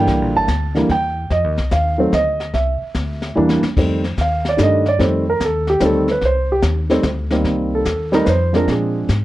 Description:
jazz piano trio; 147 BPM; 3/4; swing 66% on 8ths; F mixolydian; A4 = 438 Hz
warm concert grand piano; melody; 0.0-9.1 s; D3 to A5; -17 LUFS; right 1 dB
upright bass; bass; 0.0-9.2 s; G1 to Bb2; -20 LUFS; equal
jazz brush drum kit; drums; 0.1-9.2 s; brushed snare drum, crash cymbal, hi-hat, kick drum, snare drum; -24 LUFS; left 2 dB
light reverb; worn, warbling old tape, cassette tape, warbly pitch drift; -15 LUFS; side -16 dB against mid
0.0-3.8 A section; 3.8-9.2 B section
drum fill 3.4-3.8; grand piano solo 3.8-9.2
0.1 C9; 1.3 F7(no3); 2.1 N.C.; 2.5 Cadd9; 3.8 F9; 7.5 Cm7; 8.3 F5; 8.7 Bb9

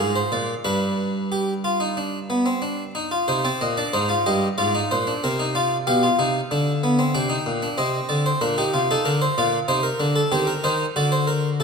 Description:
classical, baroque-style 3-part fugue for harpsichord; 93 BPM; 4/4; straight; C minor; A4 = 438 Hz
harpsichord; solo; 0.0-11.6 s; G2 to G5; -20 LUFS; equal
wet concert hall reverb, RT60 1.9 s; -20 LUFS; side -5 dB against mid
0.0-3.3 A section; 3.3-11.6 B section
0.0 Ddim; 0.7 G; 3.3 Cm; 4.6 Dm7b5/Ab; 5.9 G7/B; 7.1 Cm; 8.4 Gm/Bb; 9.7 Am7b5/C; 11.0 D7

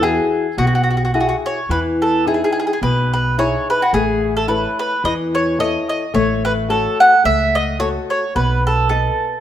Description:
italian folk, Italian serenade; 108 BPM; 4/4; swing 54% on 8ths; E major; A4 = 440 Hz
mandolin; melody; 0.0-9.4 s; F#4 to F#5; -17 LUFS; right 1 dB
nylon-string guitar; accompaniment; 0.0-9.3 s; B2 to D#5; -20 LUFS; left 3 dB
upright bass; bass; 0.0-9.1 s; A1 to E2; -22 LUFS; right 1 dB
moderate recital hall reverb, RT60 1.8 s; minimal, uncompressed stereo recording; -15 LUFS; side -11 dB against mid
0.0-1.7 A section; 1.7-9.4 A section
0.0 Eadd9; 1.7 Emaj7; 3.9 A; 6.1 F#m/A; 8.3 B7

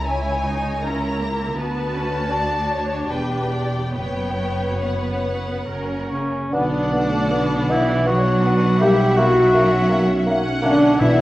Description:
classical; 66-84 BPM; 3/4; rubato; B minor; A4 = 439 Hz
warm symphonic violin section; melody; 0.0-11.2 s; F#5 to A#5; -29 LUFS; left 2 dB
rich symphonic violin section; second line; 0.0-11.2 s; A#4 to F#5; -29 LUFS; left 3 dB
bright symphonic viola section; accompaniment; 0.0-11.2 s; A3 to B4; -28 LUFS; equal
rich symphonic cello section; bass; 0.0-11.2 s; C#2 to G3; -25 LUFS; right 2 dB
warm symphonic double bass section; bass; 0.0-11.2 s; E1 to D2; -26 LUFS; right 1 dB
warm cor anglais; second line; 6.1-11.2 s; C#4 to G4; -24 LUFS; equal
mellow French horn section; sustained chords; 6.1-11.2 s; C#4 to G4; -20 LUFS; left 1 dB
mellow hollow baroque flute; second line; 6.5-11.2 s; D5 to F#5; -27 LUFS; left 1 dB
mellow bassoon; accompaniment; 6.5-11.2 s; A#3 to B3; -26 LUFS; equal
mellow tuba; bass; 6.5-11.2 s; B1; -25 LUFS; right 2 dB
timpani; percussion; 11.0-11.2 s; B2; -18 LUFS; equal
wet recital hall reverb, RT60 1.6 s; worn, warbling old tape, cassette tape, warbly pitch drift; -17 LUFS; side -16 dB against mid
0.0-6.5 A section; 6.5-11.2 B section
0.0 A#dim/C#; 1.6 Bm/D; 3.1 Em7; 3.9 F#sus4; 5.7 F#; 6.5 Bm; 8.8 F#7/B

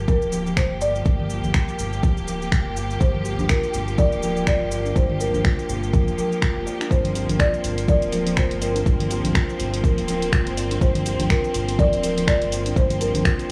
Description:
afro house; 123 BPM; 4/4; swing 57% on 16ths; G minor; A4 = 441 Hz
folk marimba with medium mallets; melody; 0.0-13.5 s; Bb4 to D5; -28 LUFS; equal; analog delay
rich studio string section; sustained chords; 0.0-13.5 s; F3 to G4; -32 LUFS; equal; sidechain pumping
warm sub bass; bass; 0.0-13.5 s; D1 to G1; -30 LUFS; equal; tube saturation, sidechain pumping
afro-pop drum kit; drums; 0.1-13.5 s; cabasa, finger snaps, hi-hat, toms; -30 LUFS; equal; studio reverb
electronic kick drum; drums; 0.1-13.4 s; -22 LUFS; equal; studio reverb
congas; percussion; 0.1-13.5 s; -32 LUFS; equal
buzzing kalimba; arpeggios; 3.3-13.4 s; D4 to D5; -31 LUFS; equal; sidechain pumping, analog delay
light reverb, small room ambience; dry, gritty hardware recording, cassette tape; -21 LUFS; mono
0.0-13.5 A section
0.0 Gm7

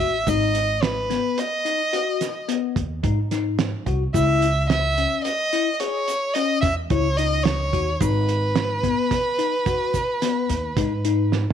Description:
progressive instrumental, band music in an uneven meter; 109 BPM; 7/4; straight; A4 = 440 Hz
warm violin; melody; 0.0-11.3 s; B4 to E5; -23 LUFS; right 1 dB
bell-like tine electric piano; arpeggios; 0.0-11.3 s; B3 to G#4; -26 LUFS; left 11 dB; phaser
upright bass; bass; 0.0-11.4 s; G#1 to G#2; -24 LUFS; equal
cloth-damped thuddy drum kit; drums; 0.0-11.5 s; hi-hat, kick drum, snare drum, toms; -26 LUFS; right 5 dB
tube shaker; percussion; 0.3-10.6 s; -41 LUFS; right 14 dB
light reverb, small room ambience; 1960s-style stereo with parts hard left and right; -20 LUFS; side -8 dB against mid
0.0-11.5 A section
drum fill 11.3
0.3 G#m; 4.1 C#madd9; 8.0 G#m

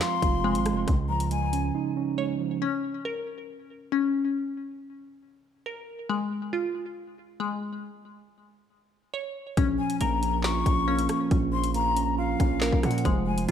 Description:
hip hop, drill; 138 BPM; 4/4; half-time; A4 = 440 Hz
breathy jazz flute; second line; 0.0-1.7, 9.8-13.5 s; F5 to Db6; -30 LUFS; left 6 dB; tape echo
mellow tine electric piano; accompaniment; 0.0-2.6, 9.6-13.5 s; Bb2 to F5; -29 LUFS; right 8 dB
glassy wavetable pluck; arpeggios; 0.0-13.5 s; Ab3 to Db5; -30 LUFS; left 4 dB; chorus, tape echo
drill drum kit; drums; 0.0-1.6, 9.6-13.5 s; handclaps, hi-hat, kick drum, rim click, snare drum; -28 LUFS; equal
distorted 808-style bass; bass; 0.2-1.7, 9.6-13.5 s; F1 to Bb2; -29 LUFS; left 1 dB; distortion
moderate recital hall reverb, RT60 1.5 s; dark, warm production; -24 LUFS; side -8 dB against mid
0.0-2.6 A section; 2.6-13.5 A section
break 1.7-2.6
0.0 Fm; 0.9 Dbadd9; 2.6 Bbm; 6.1 Fm; 7.8 N.C.; 9.6 Bbm

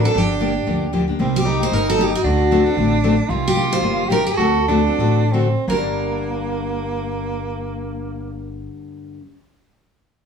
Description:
acoustic string swing (jazz manouche); 161-230 BPM; 4/4; swing 56% on 8ths; G minor; A4 = 442 Hz
picked steel-string acoustic guitar; melody; 0.0-8.7 s; F#4 to C5; -21 LUFS; right 1 dB
bright soprano saxophone; second line; 0.0-8.7 s; Bb3 to G4; -23 LUFS; right 5 dB
picked steel-string acoustic guitar; accompaniment; 0.0-9.2 s; G2 to A4; -22 LUFS; left 4 dB
upright bass; bass; 0.0-8.7 s; G1 to D2; -23 LUFS; equal
moderate studio reverb, RT60 0.9 s; studio ambience; -16 LUFS; side -6 dB against mid
0.0-1.2 A section; 1.2-5.7 B section; 5.7-8.7 C section
slowing down 3.3-5.7
0.2 Gm7; 1.2 Cm7; 2.2 D7; 3.3 Cm7; 4.4 D7; 5.7 Gm

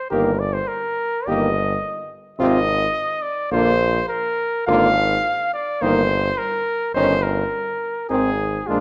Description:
classical, brass quintet; 106 BPM; 4/4; rubato; Eb major; A4 = 440 Hz
mellow trumpet; melody; 0.0-8.8 s; F4 to F5; -24 LUFS; equal
warm flugelhorn; second line; 0.1-8.8 s; D4 to G4; -29 LUFS; equal
clear trombone; accompaniment; 0.1-8.8 s; C3 to Ab3; -30 LUFS; equal
warm French horn; accompaniment; 0.1-8.8 s; Bb3 to Db4; -26 LUFS; equal
clear bass trombone; bass; 0.1-8.8 s; G1 to Bb1; -26 LUFS; equal
moderate recital hall reverb, RT60 1.4 s; dark, warm production; -21 LUFS; mono
0.0-8.8 A section
0.1 Eb/G; 2.4 Fm/Ab (rootless); 3.5 Bb; 4.7 Bb7/Ab; 5.8 Eb/G; 7.0 Eb7/G; 8.1 Ab

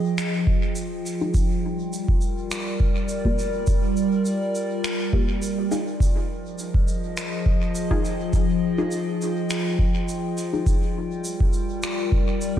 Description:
ambient dub; 103 BPM; 4/4; swing 54% on 16ths; F dorian; A4 = 440 Hz
warbly tape-like pad; sustained chords; 0.0-12.6 s; F3 to G5; -25 LUFS; equal; chorus, built-in reverb, phaser
finger snaps and shaker; drums; 0.2-12.5 s; -33 LUFS; equal; dub echo
electronic kick drum; drums; 0.5-12.6 s; -22 LUFS; equal; overdrive
filtered dub chord stab; stabs; 1.2-12.6 s; Bb3 to Ab4; -30 LUFS; left 2 dB; phaser, dub echo
light reverb, small room ambience; -21 LUFS; side -11 dB against mid
0.0-12.6 A section
0.0 Fm7; 1.3 Gm7; 6.0 Fm7; 10.7 Gm7

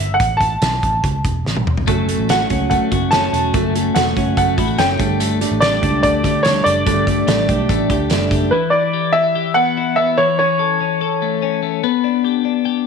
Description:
jangly indie pop; 145 BPM; 4/4; straight; A4 = 440 Hz
warm upright piano; melody; 0.0-11.6 s; B4 to A5; -17 LUFS; right 1 dB; slapback echo
vintage muted picked electric bass; bass; 0.0-8.5 s; E1 to D2; -22 LUFS; equal
loose indie drum kit; drums; 0.2-8.4 s; hi-hat, kick drum, snare drum, toms; -21 LUFS; right 1 dB
fingerpicked steel-string acoustic guitar; accompaniment; 1.9-8.5 s; F#3 to G4; -21 LUFS; right 13 dB
twelve-string electric guitar; arpeggios; 1.9-12.9 s; E3 to A4; -20 LUFS; left 14 dB; spring reverb
moderate echo chamber reverb, RT60 1.6 s, small room ambience; 1960s-style stereo with parts hard left and right; -14 LUFS; side -6 dB against mid
0.0-8.5 A section; 8.5-12.9 B section
drum fill 1.5-1.9
0.0 A5; 1.9 F#m; 5.0 Gsus2; 8.5 Em; 10.2 A; 11.8 G

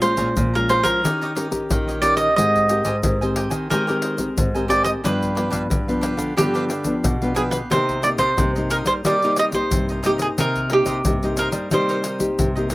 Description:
samba and choro; 90 BPM; 4/4; straight; C minor; A4 = 440 Hz
cavaquinho; melody; 0.0-12.7 s; G4 to Eb5; -21 LUFS; right 1 dB
cavaquinho; accompaniment; 0.0-12.7 s; D4 to Bb5; -31 LUFS; right 2 dB; slapback echo
nylon-string guitar; accompaniment; 0.0-12.7 s; G2 to Bb4; -24 LUFS; left 1 dB
nylon-string guitar; bass; 0.0-12.7 s; G2 to G3; -26 LUFS; equal
tube shaker, pandeiro and surdo; percussion; 0.0-12.7 s; -25 LUFS; left 1 dB
little or no reverb; recorded outdoors, with no room sound; -18 LUFS; side -19 dB against mid
0.0-12.7 A section
0.0 Bbm7; 1.0 Eb7; 2.4 Abmaj9; 5.0 G7; 7.7 Cm7

